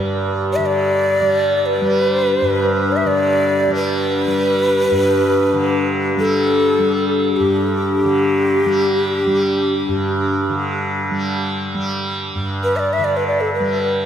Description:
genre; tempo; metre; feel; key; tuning
world meditative, free-time meditation music; free time; none; none; G major pentatonic; A4 = 435 Hz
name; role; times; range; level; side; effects
breathy Native American-style cedar flute; melody; 0.0-14.1 s; G4 to E5; -18 LUFS; equal; tape echo
tanpura; drone; 0.0-14.1 s; G2 to G3; -21 LUFS; right 1 dB; none
glass harmonica; texture; 0.0-10.1 s; D4 to D5; -21 LUFS; left 3 dB; none
room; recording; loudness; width
wet huge ambient reverb, RT60 4.3 s; none; -15 LUFS; side -9 dB against mid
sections
0.0-14.1 A section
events
none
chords
none

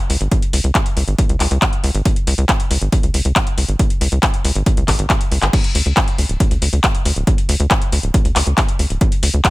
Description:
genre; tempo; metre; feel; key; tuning
uplifting trance; 138 BPM; 4/4; straight; unclear; A4 = 436 Hz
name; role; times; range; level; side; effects
tight sequencer bass; bass; 0.1-9.4 s; D1 to D2; -16 LUFS; equal; sidechain pumping
techno drum kit; drums; 0.1-9.5 s; crash cymbal, handclaps, hi-hat; -19 LUFS; left 1 dB; none
electronic kick drum; drums; 0.3-9.5 s; none; -16 LUFS; equal; none
room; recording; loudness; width
little or no reverb; none; -14 LUFS; side -19 dB against mid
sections
0.0-9.5 A section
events
drum fill 5.1-5.5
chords
none

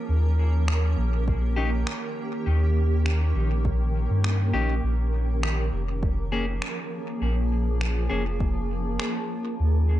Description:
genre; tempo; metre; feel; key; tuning
ambient dub; 101 BPM; 4/4; straight; Bb dorian; A4 = 440 Hz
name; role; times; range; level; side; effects
granular cloud pad; sustained chords; 0.0-10.0 s; Eb3 to Bb4; -30 LUFS; right 1 dB; built-in reverb
soft dub sub bass; bass; 0.1-10.0 s; F1 to G2; -23 LUFS; equal; none
electronic finger snaps; drums; 0.7-9.1 s; none; -35 LUFS; equal; dub echo
electronic kick drum; drums; 1.3-8.5 s; none; -27 LUFS; equal; none
clean electric guitar; stabs; 1.6-8.2 s; Bb3 to Ab4; -32 LUFS; left 3 dB; dub echo
room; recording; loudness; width
light reverb, digital ambience; nothing above 10.5 kHz; -23 LUFS; side -14 dB against mid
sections
0.0-10.0 A section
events
none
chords
0.1 Eb7; 4.8 Bbm7

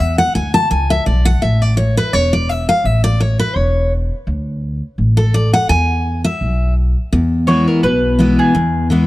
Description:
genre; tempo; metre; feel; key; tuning
bluegrass; 168 BPM; 4/4; swing 55% on 8ths; E mixolydian; A4 = 440 Hz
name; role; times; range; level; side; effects
picked steel-string acoustic guitar; accompaniment; 0.0-9.1 s; E2 to A5; -15 LUFS; left 1 dB; none
upright bass; bass; 0.0-9.1 s; E1 to E2; -16 LUFS; equal; none
mandolin; melody; 7.5-8.9 s; G#4 to C#5; -18 LUFS; equal; none
room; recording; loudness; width
small room ambience; dry, close 1970s-style studio recording; -13 LUFS; side -17 dB against mid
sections
0.0-7.1 A section; 7.1-9.1 A section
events
steel-string acoustic guitar solo 0.0-7.1; mandolin solo 7.1-9.1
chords
0.0 E; 1.4 A; 4.3 D5; 5.7 E

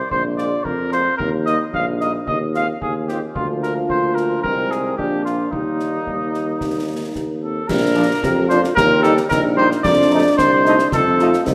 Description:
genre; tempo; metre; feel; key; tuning
military-style march for wind band; 111 BPM; 2/4; straight; Eb major, Bb major from 7.7 s; A4 = 440 Hz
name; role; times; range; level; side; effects
warm cornet; melody; 0.0-11.4 s; Eb4 to F5; -22 LUFS; equal; none
warm tuba; bass; 0.1-11.5 s; Bb1 to F2+20c; -24 LUFS; equal; none
concert bass drum, concert snare drum and clash cymbals; drums; 0.1-11.5 s; none; -31 LUFS; equal; none
warm French horn section; accompaniment; 0.4-11.3 s; Eb3 to F4; -28 LUFS; equal; none
mellow euphonium; second line; 6.1-11.5 s; G3 to G4; -25 LUFS; equal; none
warm trombone section; sustained chords; 8.0-11.3 s; F3 to Eb4; -28 LUFS; equal; none
room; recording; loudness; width
wet concert hall reverb, RT60 2.3 s; none; -18 LUFS; mono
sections
0.0-7.7 A section; 7.7-11.5 B section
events
none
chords
0.1 Bb5; 1.2 Eb; 2.3 Fm7/Eb; 3.4 Bb/D; 4.4 Ab/C; 5.0 Bb; 5.5 Eb; 7.7 Bb; 8.8 Eb; 9.8 F7

